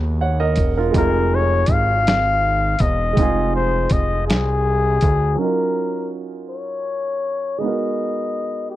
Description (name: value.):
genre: slow six-eight R&B.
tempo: 54 BPM (dotted quarters).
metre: 6/8.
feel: straight.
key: Eb dorian.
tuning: A4 = 437 Hz.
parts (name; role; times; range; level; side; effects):
warm grand piano; accompaniment; 0.0-8.8 s; C3 to Gb5; -24 LUFS; right 6 dB; none.
fat analog bass; bass; 0.0-5.4 s; Fb1 to Eb2; -20 LUFS; equal; none.
dusty soul sampler-style drum kit; drums; 0.6-5.2 s; hi-hat, kick drum, snare drum; -19 LUFS; equal; none.
breathy flugelhorn; melody; 1.0-8.8 s; Ab4 to F5; -21 LUFS; left 4 dB; none.
room: small room ambience.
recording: dry, close 1970s-style studio recording, low-pass filter.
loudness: -17 LUFS.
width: side -14 dB against mid.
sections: 0.0-5.4 A section; 5.4-8.8 B section.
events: filter sweep 5.4-8.8.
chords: 0.0 Abm7; 0.9 Fm7; 5.4 Ebm7; 7.6 Abm9.